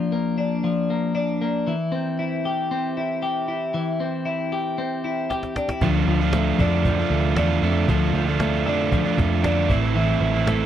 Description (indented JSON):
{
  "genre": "jangly indie pop",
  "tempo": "116 BPM",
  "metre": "4/4",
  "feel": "straight",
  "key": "unclear",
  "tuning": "A4 = 439 Hz",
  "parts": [
    { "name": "twelve-string electric guitar", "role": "arpeggios", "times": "0.0-10.7 s", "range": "E3 to G4", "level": "-23 LUFS", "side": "left 3 dB", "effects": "none" },
    { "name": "cajon", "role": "drums", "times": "5.3-10.6 s", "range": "none", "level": "-25 LUFS", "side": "right 1 dB", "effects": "none" },
    { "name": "biting overdriven guitar", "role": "accompaniment", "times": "5.8-10.7 s", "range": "A2 to F4", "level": "-23 LUFS", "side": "right 9 dB", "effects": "none" },
    { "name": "vintage muted picked electric bass", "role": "bass", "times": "5.8-10.7 s", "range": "A1 to F2", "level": "-23 LUFS", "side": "equal", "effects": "none" }
  ],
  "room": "little or no reverb",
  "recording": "dry, close 1970s-style studio recording",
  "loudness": "-20 LUFS",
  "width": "side -10 dB against mid",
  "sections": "0.0-10.7 A section",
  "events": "drum fill 5.3-5.8",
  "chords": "0.0 Bb/F; 1.7 C; 5.8 Dm; 9.7 Am",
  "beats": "0.12 0.64 1.16 | 1.67 2.19 2.71 3.23 | 3.74 4.26 4.78 5.30 | 5.82 6.33 6.85 7.37 | 7.89 8.41 8.92 9.44 | 9.96 10.48"
}